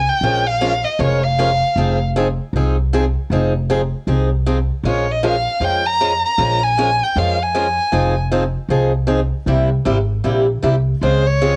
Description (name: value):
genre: acoustic string swing (jazz manouche)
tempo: 156 BPM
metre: 4/4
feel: swing 62% on 8ths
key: F minor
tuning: A4 = 440 Hz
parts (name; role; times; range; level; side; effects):
- warm violin; melody; 0.0-2.0, 4.9-8.2, 11.0-11.6 s; C5 to Bb5; -20 LUFS; equal; cassette tape
- upright bass; bass; 0.0-11.6 s; F1 to F2; -21 LUFS; equal; none
- picked swing-style acoustic guitar; accompaniment; 0.2-11.5 s; C3 to Bb4; -22 LUFS; equal; cassette tape
room: moderate small room ambience, RT60 0.5 s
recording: home recording on cassette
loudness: -17 LUFS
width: mono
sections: 0.0-11.6 A section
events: none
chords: 0.2 Bbm7; 1.8 Fm7; 4.8 Bbm7; 7.9 Fm7; 9.5 C7; 11.0 Dbmaj7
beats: | 0.22 0.61 0.99 1.38 | 1.76 2.15 2.53 2.92 | 3.30 3.69 4.07 4.46 | 4.84 5.23 5.62 6.00 | 6.39 6.77 7.16 7.54 | 7.93 8.31 8.70 9.09 | 9.47 9.86 10.24 10.63 | 11.02 11.40